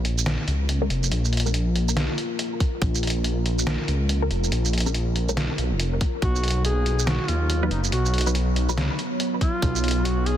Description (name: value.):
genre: deep dubstep.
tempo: 141 BPM.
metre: 4/4.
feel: swing 62% on 16ths, half-time.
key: Bb phrygian.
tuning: A4 = 439 Hz.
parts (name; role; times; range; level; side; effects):
deep dark ambient pad; sustained chords; 0.0-10.4 s; F#3 to Db5; -31 LUFS; right 1 dB; chorus, built-in reverb.
dark detuned saw bass; bass; 0.0-10.4 s; F1 to D#2; -23 LUFS; equal; none.
trip hop sampler-style drum kit; drums; 0.0-10.4 s; hi-hat, shaker, snare drum; -28 LUFS; right 1 dB; none.
filtered dub chord stab; stabs; 0.8-8.8 s; F#3 to B4; -33 LUFS; left 1 dB; phaser, dub echo.
electronic kick drum; drums; 2.6-2.9, 6.0-6.3, 9.4-9.7 s; none; -23 LUFS; equal; none.
warm duduk; melody; 6.2-10.4 s; D#4 to Ab4; -28 LUFS; equal; dub echo.
room: little or no reverb.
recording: dense, heavily limited modern master.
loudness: -21 LUFS.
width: side -11 dB against mid.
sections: 0.0-10.4 A section.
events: filter sweep on synth stab 0.0-10.4.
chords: 0.0 Bbm7; 6.2 B.